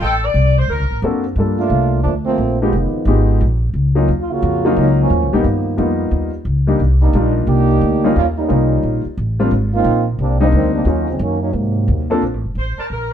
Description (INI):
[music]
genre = jazz, big band swing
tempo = 177 BPM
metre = 4/4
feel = swing 65% on 8ths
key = unclear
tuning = A4 = 440 Hz
[part]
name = warm saxophone section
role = melody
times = 0.0-1.0, 12.6-13.1 s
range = A4 to D5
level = -20 LUFS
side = left 3 dB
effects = none
[part]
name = warm trumpet section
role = stabs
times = 0.0-0.2, 12.8-12.9 s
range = A4 to A5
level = -22 LUFS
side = left 1 dB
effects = none
[part]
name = upright bass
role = bass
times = 0.0-13.1 s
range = F1 to Ab2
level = -16 LUFS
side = equal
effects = none
[part]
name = clear grand piano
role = accompaniment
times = 1.0-12.2 s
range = F3 to A4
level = -18 LUFS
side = left 2 dB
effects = none
[part]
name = warm trombone section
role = second line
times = 1.6-12.1 s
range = C3 to G4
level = -18 LUFS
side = right 3 dB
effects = none
[sound]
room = light reverb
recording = band playing live in one room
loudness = -14 LUFS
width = side -9 dB against mid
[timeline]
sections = 0.0-1.4 A section; 1.4-12.2 B section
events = trombone section solo 1.4-12.2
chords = 0.0 Am7b5; 0.7 D7b13; 1.4 Gm9; 2.7 Fm7b5; 3.4 Bbm; 4.1 Ebm9; 5.4 G7alt; 6.8 Cm11; 8.2 Eb7; 9.5 Abmaj9#11; 10.9 Ebm7; 11.5 Ab9; 12.2 Bbmaj7sus2